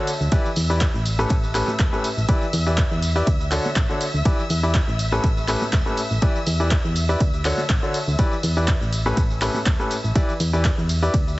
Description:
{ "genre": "piano house", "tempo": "122 BPM", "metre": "4/4", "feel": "swing 54% on 16ths", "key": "E dorian", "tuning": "A4 = 438 Hz", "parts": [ { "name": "warm symphonic violin section", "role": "sustained chords", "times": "0.0-11.4 s", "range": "E5 to E6", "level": "-33 LUFS", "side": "left 2 dB", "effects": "sidechain pumping" }, { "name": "bright concert grand piano", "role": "riff", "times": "0.0-11.1 s", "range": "A2 to D5", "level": "-25 LUFS", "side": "left 1 dB", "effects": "sidechain pumping, tape echo" }, { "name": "punchy analog drum machine", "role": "drums", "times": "0.1-11.4 s", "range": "handclaps, hi-hat, ride cymbal, shaker", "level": "-29 LUFS", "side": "equal", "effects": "overdrive" }, { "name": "tambourine and congas", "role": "percussion", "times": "0.1-11.4 s", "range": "none", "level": "-36 LUFS", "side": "right 2 dB", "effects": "none" }, { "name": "solid FM bass", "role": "bass", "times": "0.2-11.4 s", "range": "E1 to E2", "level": "-23 LUFS", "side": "equal", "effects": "tube saturation, sidechain pumping" }, { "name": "electronic kick drum", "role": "drums", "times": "0.3-11.2 s", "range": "none", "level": "-20 LUFS", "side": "equal", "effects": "overdrive" } ], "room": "little or no reverb", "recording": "heavily compressed radio sound, multiband compression, nothing above 7.9 kHz", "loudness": "-18 LUFS", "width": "side -19 dB against mid", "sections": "0.0-11.4 A section", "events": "none", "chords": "0.3 Em7; 1.1 A9; 2.3 Em7; 3.3 Dmaj7; 4.3 Em7; 5.0 A9; 6.2 Em7; 7.2 Dmaj7; 8.2 Em7; 8.9 A9; 10.2 Em7", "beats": "| 0.32 0.81 1.30 1.79 | 2.29 2.78 3.27 3.76 | 4.25 4.75 5.24 5.73 | 6.22 6.71 7.21 7.70 | 8.19 8.68 9.17 9.66 | 10.16 10.65 11.14" }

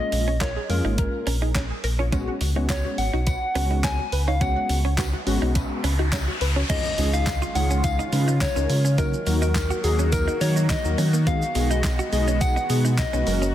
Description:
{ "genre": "dance-pop", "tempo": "105 BPM", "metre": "4/4", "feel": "straight", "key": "unclear", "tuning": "A4 = 442 Hz", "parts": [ { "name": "soft struck synth lead", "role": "melody", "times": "0.0-13.5 s", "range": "Ab4 to Ab5", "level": "-28 LUFS", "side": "left 2 dB", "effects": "chorus, tape echo" }, { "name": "warm analog keys", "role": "accompaniment", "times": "0.0-13.5 s", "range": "Gb3 to Cb5", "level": "-29 LUFS", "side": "left 1 dB", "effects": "chorus, sidechain pumping" }, { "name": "wide unison pluck", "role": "arpeggios", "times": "0.0-6.6 s", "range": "Db4 to Db5", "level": "-35 LUFS", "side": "left 2 dB", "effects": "flanger, sidechain pumping, tape echo" }, { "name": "direct-recorded clean electric guitar", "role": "riff", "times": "0.1-13.5 s", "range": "Bb3 to Gb4", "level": "-33 LUFS", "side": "right 6 dB", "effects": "wide subtle chorus" }, { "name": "sub bass with octave", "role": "bass", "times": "0.1-13.5 s", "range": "Gb1 to Eb3", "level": "-23 LUFS", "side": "equal", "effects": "sidechain pumping" }, { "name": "clean 12-bit digital drum machine", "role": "drums", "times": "0.1-13.5 s", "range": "crash cymbal, handclaps, hi-hat, kick drum, shaker, snare drum", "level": "-28 LUFS", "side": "equal", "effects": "none" }, { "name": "tambourine", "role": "percussion", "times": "2.1-13.4 s", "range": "none", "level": "-42 LUFS", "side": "left 7 dB", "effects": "none" }, { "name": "riser and impact", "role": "sound effects", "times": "5.1-9.0 s", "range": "none", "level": "-34 LUFS", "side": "equal", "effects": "none" }, { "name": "lush unison pad", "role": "sustained chords", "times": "6.7-13.5 s", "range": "Db3 to Gb4", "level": "-32 LUFS", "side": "equal", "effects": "chorus, phaser, sidechain pumping" } ], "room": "light reverb, digital ambience", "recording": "dense, heavily limited modern master", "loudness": "-20 LUFS", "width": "side -12 dB against mid", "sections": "0.0-6.7 A section; 6.7-13.5 B section", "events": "riser 5.1-6.7; impact 6.7-9.0", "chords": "0.0 Bbm7; 2.1 Db7sus4; 6.7 Dbadd9; 9.0 Ebm; 11.3 B6", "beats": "0.41 0.98 1.55 | 2.12 2.70 3.27 3.84 | 4.41 4.98 5.55 6.12 | 6.70 7.27 7.84 8.41 | 8.98 9.55 10.12 10.70 | 11.27 11.84 12.41 12.98" }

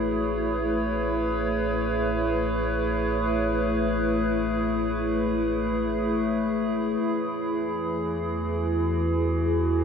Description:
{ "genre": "ambient", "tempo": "free time", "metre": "none", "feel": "none", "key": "A major", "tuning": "A4 = 444 Hz", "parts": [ { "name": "warbly tape-like pad", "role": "sustained chords", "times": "0.0-9.8 s", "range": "E3 to C#5", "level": "-24 LUFS", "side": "equal", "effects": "chorus, built-in reverb" }, { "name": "round analog bass", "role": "bass", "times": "0.0-9.8 s", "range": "A1 to E2", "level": "-31 LUFS", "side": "equal", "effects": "none" } ], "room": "wet cathedral reverb, RT60 7.3 s", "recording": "in a vast, echoing space", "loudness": "-23 LUFS", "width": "side -6 dB against mid", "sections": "0.0-9.8 A section", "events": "none", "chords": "0.0 Amaj7; 7.0 E", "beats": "free time" }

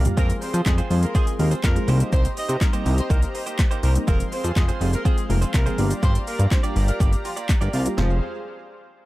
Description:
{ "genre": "dance-pop", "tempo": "123 BPM", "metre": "4/4", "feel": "straight", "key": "F dorian", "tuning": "A4 = 440 Hz", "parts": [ { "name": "mellow horn section", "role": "melody", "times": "0.0-8.2 s", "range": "F3 to Eb5", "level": "-32 LUFS", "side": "equal", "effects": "tape echo" }, { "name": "warm analog pad", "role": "sustained chords", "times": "0.0-8.2 s", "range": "G4 to C6", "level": "-34 LUFS", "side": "equal", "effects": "chorus, sidechain pumping" }, { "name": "direct-recorded clean electric guitar", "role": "riff", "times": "0.0-8.1 s", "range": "Bb3 to D5", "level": "-34 LUFS", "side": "right 5 dB", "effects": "wide subtle chorus, tape echo" }, { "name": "fat analog bass", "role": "bass", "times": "0.0-8.2 s", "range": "F1 to F3", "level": "-20 LUFS", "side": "equal", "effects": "sidechain pumping" }, { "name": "deep mellow chord stab", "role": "accompaniment", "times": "0.1-8.2 s", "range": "F3 to Bb4", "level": "-31 LUFS", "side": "equal", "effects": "chorus, sidechain pumping, tape echo" }, { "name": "deep house drum kit", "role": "drums", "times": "0.1-8.1 s", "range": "handclaps, hi-hat, kick drum, shaker, snare drum, toms", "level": "-22 LUFS", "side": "equal", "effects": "overdrive" } ], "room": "little or no reverb", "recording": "echo-heavy mix", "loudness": "-19 LUFS", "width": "side -18 dB against mid", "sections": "0.0-8.0 A section; 8.0-9.1 B section", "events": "drop 0.0-8.0; drum fill 0.0", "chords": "0.2 Fm; 1.9 Cm7; 4.1 Fm; 5.8 Gm7; 8.0 Fm", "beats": "| 0.17 0.66 1.15 1.64 | 2.13 2.61 3.10 3.59 | 4.08 4.57 5.05 5.54 | 6.03 6.52 7.00 7.49 | 7.98" }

